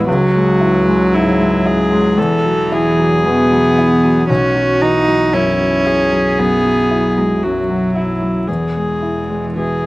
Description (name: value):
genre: neoclassical piano and strings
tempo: 57 BPM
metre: 4/4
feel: rubato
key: E major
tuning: A4 = 440 Hz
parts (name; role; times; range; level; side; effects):
- rich cello; second line; 0.0-9.9 s; E3 to D#4; -16 LUFS; right 1 dB; none
- rich viola; accompaniment; 0.0-9.9 s; E4 to A4; -17 LUFS; equal; slapback echo
- warm concert grand piano; accompaniment; 0.0-9.9 s; B1 to E4; -17 LUFS; left 1 dB; slapback echo
- rich double bass; bass; 0.0-9.9 s; E1 to C#2; -24 LUFS; left 1 dB; none
room: little or no reverb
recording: recorded outdoors, with no room sound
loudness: -12 LUFS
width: side -20 dB against mid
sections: 0.0-9.9 A section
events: none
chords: 0.1 C#m; 2.2 Esus2; 4.3 Bsus4; 8.5 E